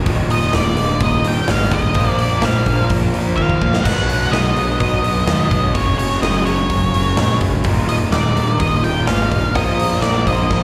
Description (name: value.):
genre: quiet-loud alternative rock.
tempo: 126 BPM.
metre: 4/4.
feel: straight.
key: unclear.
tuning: A4 = 436 Hz.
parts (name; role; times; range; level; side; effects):
fuzz guitar; riff; 0.0-10.6 s; Eb2 to B3; -30 LUFS; equal; none.
overdriven semi-hollow guitar; riff; 0.0-10.6 s; Eb2 to B3; -27 LUFS; equal; none.
raw garage guitar; riff; 0.0-10.6 s; Eb2 to B3; -28 LUFS; equal; overdrive, slapback echo.
growling picked electric bass; bass; 0.0-10.6 s; Eb1 to Eb2; -21 LUFS; equal; overdrive.
big rock drum kit; drums; 0.1-10.6 s; crash cymbal, hi-hat, kick drum, snare drum, splash cymbal; -23 LUFS; equal; none.
octave-fuzz lead guitar; melody; 0.3-10.6 s; Db5 to G5; -23 LUFS; equal; distortion, slapback echo, digital delay.
room: little or no reverb.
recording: live gig heard through the venue's PA, recital hall reverb.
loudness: -17 LUFS.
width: mono.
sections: 0.0-10.6 A section.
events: drum fill 3.4-3.9.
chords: 0.1 Eb5; 2.0 Bb5; 3.9 B; 5.8 Gb5; 7.7 Eb5; 9.6 Bbsus4.